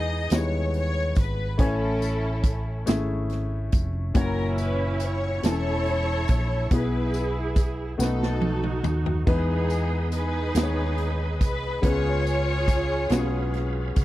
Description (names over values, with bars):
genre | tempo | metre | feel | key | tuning
slow gospel | 47 BPM (dotted quarters) | 6/8 | straight | E major | A4 = 440 Hz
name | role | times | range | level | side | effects
rich symphonic string section | melody | 0.0-14.0 s | B3 to D#5 | -29 LUFS | equal | none
warm upright piano | accompaniment | 0.0-14.0 s | A2 to G#5 | -30 LUFS | left 3 dB | none
hollow-body short-scale fingered electric bass | bass | 0.0-14.0 s | E1 to E2 | -27 LUFS | equal | none
swinging big-band drum kit | drums | 0.3-14.0 s | hi-hat, kick drum, snare drum, splash cymbal, toms | -24 LUFS | right 1 dB | none
tambourine | percussion | 0.3-14.0 s | none | -42 LUFS | left 11 dB | none
bright tonewheel organ | sustained chords | 9.3-14.0 s | G#4 to B5 | -38 LUFS | right 2 dB | slow rotary speaker, overdrive, chorus vibrato
room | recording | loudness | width
little or no reverb | dry, close 1970s-style studio recording | -22 LUFS | side -15 dB against mid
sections
0.0-14.0 A section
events
drum fill 8.0-9.3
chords
0.0 Emaj7; 1.6 Amaj7; 4.1 F#7; 5.4 A/E; 6.7 E/B; 8.0 B7; 9.3 Emaj7; 11.8 C#7